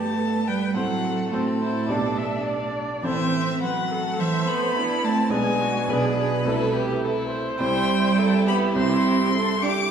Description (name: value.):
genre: quick classical-period movement for piano quintet.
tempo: 105 BPM.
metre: 4/4.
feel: straight.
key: unclear.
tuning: A4 = 441 Hz.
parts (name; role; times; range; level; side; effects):
rich violin; melody; 0.0-9.9 s; A4 to D6; -27 LUFS; left 4 dB; none.
rich cello; second line; 0.0-9.7 s; A2 to D4; -25 LUFS; right 5 dB; none.
rich violin; second line; 0.0-9.9 s; A3 to E4; -30 LUFS; left 4 dB; none.
clear grand piano; accompaniment; 0.0-9.9 s; A1 to C5; -27 LUFS; right 2 dB; none.
warm viola; accompaniment; 0.0-9.9 s; E4 to E5; -29 LUFS; right 2 dB; none.
room: wet recital hall reverb, RT60 1.3 s.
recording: studio reverb.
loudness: -20 LUFS.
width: side -7 dB against mid.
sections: 0.0-9.9 A section.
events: none.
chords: 0.0 G; 0.8 F#dim/A; 1.9 G/B; 3.1 Am; 5.3 G#dim/B; 6.5 Am/C.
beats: 0.20 | 0.77 1.34 1.92 2.49 | 3.06 3.63 4.20 4.77 | 5.34 5.90 6.47 7.04 | 7.61 8.19 8.76 9.34.